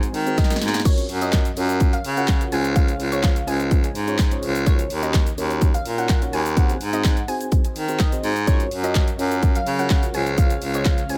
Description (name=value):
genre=dance-pop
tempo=126 BPM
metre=4/4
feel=straight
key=Db major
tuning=A4 = 439 Hz
part: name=airy breathy pad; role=sustained chords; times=0.1-0.8, 9.2-11.2 s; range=Db3 to F5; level=-38 LUFS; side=equal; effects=none
part: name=breathy baritone saxophone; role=bass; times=0.0-11.2 s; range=Db2 to Eb3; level=-26 LUFS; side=equal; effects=sidechain pumping
part: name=house drum kit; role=drums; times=0.0-11.2 s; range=crash cymbal, handclaps, hi-hat, kick drum, shaker, snare drum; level=-22 LUFS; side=equal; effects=none
part: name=mellow tine electric piano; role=accompaniment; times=0.3-11.2 s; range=C4 to Eb5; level=-32 LUFS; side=equal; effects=sidechain pumping, tape echo
part: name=glassy wavetable pluck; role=melody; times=0.4-11.2 s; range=Db5 to Ab5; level=-32 LUFS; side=equal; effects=chorus, sidechain pumping, tape echo
room=little or no reverb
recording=echo-heavy mix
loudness=-21 LUFS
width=mono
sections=0.9-11.2 A section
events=drum fill 0.4-0.9; drop 0.9-11.2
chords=0.0 Ab7; 0.9 Gbmaj7; 2.5 Dbmaj7; 4.7 Ebm7; 6.6 Ab7; 8.5 Gbmaj7; 10.1 Dbmaj7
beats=0.38 | 0.85 1.33 1.81 2.28 | 2.76 3.24 3.71 4.19 | 4.67 5.14 5.62 6.09 | 6.57 7.05 7.52 8.00 | 8.47 8.95 9.43 9.90 | 10.38 10.86